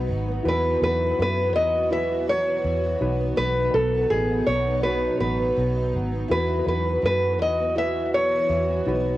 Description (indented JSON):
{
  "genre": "acoustic pop",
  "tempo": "82 BPM",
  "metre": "4/4",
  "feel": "swing 55% on 16ths",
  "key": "unclear",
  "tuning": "A4 = 443 Hz",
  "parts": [
    { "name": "nylon-string guitar", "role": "melody", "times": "0.0-9.2 s", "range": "G#4 to E5", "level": "-23 LUFS", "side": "equal", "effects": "cassette tape, plate reverb, tape echo" },
    { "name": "fingerpicked twelve-string acoustic guitar", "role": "accompaniment", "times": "0.0-9.2 s", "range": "B2 to B4", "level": "-30 LUFS", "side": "right 1 dB", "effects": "double-tracked left and right, cassette tape, plate reverb" },
    { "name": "reed electric piano", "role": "accompaniment", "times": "0.0-9.2 s", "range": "D#4 to C#5", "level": "-30 LUFS", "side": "left 1 dB", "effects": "harmonic tremolo, cassette tape, plate reverb" },
    { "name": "granular cloud pad", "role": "sustained chords", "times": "0.0-9.2 s", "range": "E3 to F#4", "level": "-34 LUFS", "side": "right 1 dB", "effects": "built-in reverb, cassette tape, plate reverb" },
    { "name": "vintage muted fingered electric bass", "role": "bass", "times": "0.0-9.2 s", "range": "G#1 to F#2", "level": "-27 LUFS", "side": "equal", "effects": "none" }
  ],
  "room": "moderate studio reverb, RT60 0.5 s",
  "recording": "home recording on cassette",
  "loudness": "-20 LUFS",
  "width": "side -15 dB against mid",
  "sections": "0.0-9.2 A section",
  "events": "none",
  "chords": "0.5 Esus2; 3.0 B; 6.3 Esus2",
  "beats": "| 0.45 1.18 1.91 2.64 | 3.38 4.11 4.84 5.57 | 6.30 7.04 7.77 8.50"
}